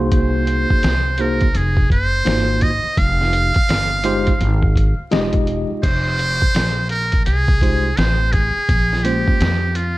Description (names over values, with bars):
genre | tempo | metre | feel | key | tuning
hip hop, jazz-hop | 84 BPM | 4/4 | swing 62% on 16ths | F minor | A4 = 438 Hz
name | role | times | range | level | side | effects
tine electric piano | accompaniment | 0.0-9.5 s | Ab3 to Eb5 | -22 LUFS | equal | medium stereo tremolo
upright bass | bass | 0.0-10.0 s | E1 to F2 | -20 LUFS | equal | none
trumpet with metal mute | melody | 0.1-10.0 s | F4 to F5 | -20 LUFS | right 2 dB | slapback echo
lo-fi sampler-style drum kit | drums | 0.1-10.0 s | crash cymbal, hi-hat, kick drum, snare drum | -19 LUFS | equal | none
room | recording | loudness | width
digital ambience | vinyl crackle | -15 LUFS | side -18 dB against mid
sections
0.0-5.8 A section; 5.8-10.0 A section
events
none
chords
0.0 Ab7/C; 2.3 Ab13; 3.0 Fm9; 5.8 Fm; 8.7 Bbm7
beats
| 0.12 0.83 1.55 2.26 | 2.98 3.69 4.40 5.12 | 5.83 6.55 7.26 7.97 | 8.69 9.40